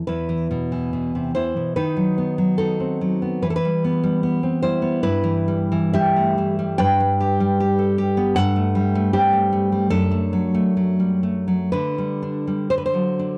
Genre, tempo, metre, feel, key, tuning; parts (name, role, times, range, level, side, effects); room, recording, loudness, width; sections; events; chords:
romantic piece for solo classical guitar; 58-79 BPM; 2/4; rubato; E minor, G major from 6.8 s; A4 = 441 Hz
nylon-string guitar; solo; 0.0-13.4 s; E2 to G5; -21 LUFS; equal
light reverb; dry, close 1970s-style studio recording; -21 LUFS; mono
0.1-13.4 A section
0.1 E5; 1.8 B/D#; 3.4 Em; 5.1 Em/G; 6.8 G; 8.4 Am7/G; 9.9 D/F#; 11.7 G/D; 12.7 D